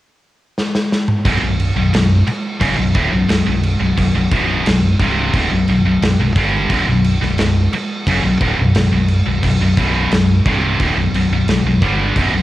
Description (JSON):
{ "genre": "heavy metal", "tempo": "88 BPM", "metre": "4/4", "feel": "straight", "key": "B minor", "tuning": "A4 = 441 Hz", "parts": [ { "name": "big rock drum kit", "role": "drums", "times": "0.6-12.3 s", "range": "crash cymbal, kick drum, snare drum, toms", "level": "-19 LUFS", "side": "equal", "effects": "none" }, { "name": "high-gain distorted guitar", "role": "riff", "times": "1.2-12.4 s", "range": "B1 to G3", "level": "-15 LUFS", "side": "equal", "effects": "distortion, cassette tape" }, { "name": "overdriven fingered electric bass", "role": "bass", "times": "1.2-12.4 s", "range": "B0 to G1", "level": "-20 LUFS", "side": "equal", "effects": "none" } ], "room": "small room ambience", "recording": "home recording on cassette", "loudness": "-13 LUFS", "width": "side -15 dB against mid", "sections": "0.0-1.2 A section; 1.2-12.4 B section", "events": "drum fill 0.6-1.2", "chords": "0.0 N.C.; 1.2 Bm" }